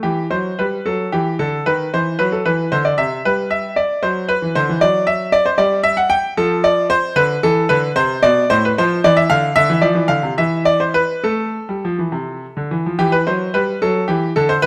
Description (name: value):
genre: classical, baroque-style suite movement for grand piano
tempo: 68-78 BPM (dotted quarters)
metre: 6/8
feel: rubato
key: E minor, A minor from 6.4 s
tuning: A4 = 440 Hz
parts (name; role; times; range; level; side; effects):
- bright concert grand piano; solo; 0.0-14.7 s; A2 to G5; -17 LUFS; equal; none
room: moderate stone room reverb, RT60 1.2 s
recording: none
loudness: -17 LUFS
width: mono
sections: 0.0-13.0 A section; 13.0-14.7 A section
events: none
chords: 0.0 Em; 1.7 D#dim7; 2.5 Cmaj9; 3.2 G5; 4.8 N.C.; 7.2 Asus24/D; 7.9 Am; 8.8 Dm; 9.6 Cadd9; 10.4 N.C.; 11.2 Am; 13.0 Em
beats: | 0.03 0.86 | 1.66 2.45 | 3.25 4.02 | 4.79 5.57 | 6.35 7.15 | 7.95 8.76 | 9.56 10.37 | 11.23 12.12 | 12.99 13.82 | 14.62